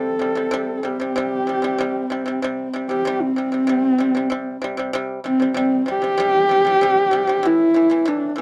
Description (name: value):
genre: mongolian traditional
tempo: 96 BPM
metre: 4/4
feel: straight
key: C gong mode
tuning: A4 = 440 Hz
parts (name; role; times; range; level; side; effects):
- dark horsehead fiddle; melody; 0.0-8.4 s; C4 to A4; -20 LUFS; equal; slapback echo
- pipa; arpeggios; 0.0-8.4 s; A2 to G3; -28 LUFS; equal; none
- dark horsehead fiddle; drone; 0.0-5.0 s; C4; -30 LUFS; equal; none
room: little or no reverb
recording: dry, close 1970s-style studio recording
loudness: -20 LUFS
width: mono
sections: 0.0-4.9 A section; 4.9-8.4 B section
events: none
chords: 0.0 C5; 7.4 A5